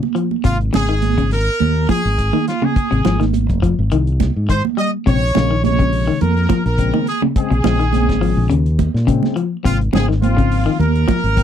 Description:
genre	afrobeat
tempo	104 BPM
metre	4/4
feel	swing 54% on 16ths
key	unclear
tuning	A4 = 440 Hz
part	electric guitar at the edge of break-up	arpeggios	0.0-11.3 s	C3 to G3	-21 LUFS	left 7 dB	none
part	congas	percussion	0.0-11.2 s	none	-22 LUFS	right 21 dB	none
part	warm soul drum kit	drums	0.2-11.4 s	hi-hat, kick drum, snare drum	-20 LUFS	equal	none
part	fingered electric bass	bass	0.4-11.4 s	F1 to Bb2	-17 LUFS	equal	none
part	brilliant horn section	melody	0.5-11.4 s	F4 to Eb5	-21 LUFS	right 2 dB	none
part	barky tine electric piano	accompaniment	5.1-11.4 s	C3 to C4	-23 LUFS	left 18 dB	overdrive
room	little or no reverb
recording	dry, close 1970s-style studio recording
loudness	-14 LUFS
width	side -9 dB against mid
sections	0.0-11.4 A section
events	none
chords	0.5 Ab6; 5.1 Bbm9

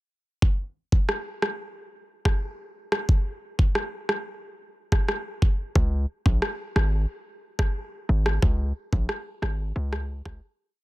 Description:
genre	dancehall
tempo	90 BPM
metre	4/4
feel	straight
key	unclear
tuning	A4 = 441 Hz
part	island pop drum kit	drums	0.4-10.4 s	kick drum, rim click	-23 LUFS	equal	overdrive
part	hard-hitting 808-style bass	bass	5.8-10.4 s	G#1 to C#2	-24 LUFS	equal	none
room	little or no reverb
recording	dense, heavily limited modern master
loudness	-23 LUFS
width	side -18 dB against mid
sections	0.4-10.8 verse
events	fade-out 8.4-10.8; break 10.4-10.8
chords	none

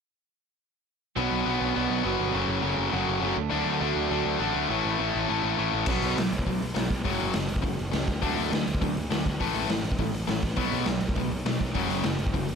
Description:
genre	punk rock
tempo	204 BPM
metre	4/4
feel	straight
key	B minor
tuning	A4 = 441 Hz
part	distorted electric guitar	riff	1.2-12.5 s	F#2 to D4	-29 LUFS	left 12 dB	overdrive
part	raw garage guitar	riff	1.2-12.5 s	F#2 to F#4	-30 LUFS	right 15 dB	overdrive
part	fuzz picked electric bass	bass	1.2-12.6 s	F#1 to D2	-32 LUFS	equal	overdrive
part	raw garage drum kit	drums	5.9-12.6 s	crash cymbal, hi-hat, kick drum, snare drum	-29 LUFS	equal	none
room	light reverb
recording	none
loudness	-24 LUFS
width	side -6 dB against mid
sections	1.2-5.9 A section; 5.9-12.6 B section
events	none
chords	1.2 Bm; 2.4 F#m; 3.4 D; 4.7 A; 5.9 B5; 7.1 F#5; 8.1 D; 9.4 A5; 10.6 B5; 11.8 F#5

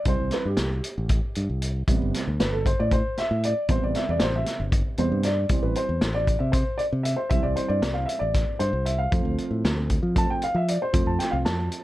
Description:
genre	progressive instrumental, band music in an uneven meter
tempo	232 BPM (eighths)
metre	7/8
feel	straight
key	C major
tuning	A4 = 442 Hz
part	dark baby grand piano	accompaniment	0.0-11.8 s	C3 to A5	-26 LUFS	right 1 dB	none
part	modern bright fingered electric bass	bass	0.1-11.7 s	G1 to F3	-26 LUFS	equal	none
part	vintage drum kit	drums	0.1-11.8 s	hi-hat, kick drum, snare drum	-26 LUFS	equal	none
room	little or no reverb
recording	none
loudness	-22 LUFS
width	side -16 dB against mid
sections	0.0-11.8 A section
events	grand piano solo 0.0-11.8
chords	0.0 C; 1.9 Am7; 5.5 C; 9.1 F

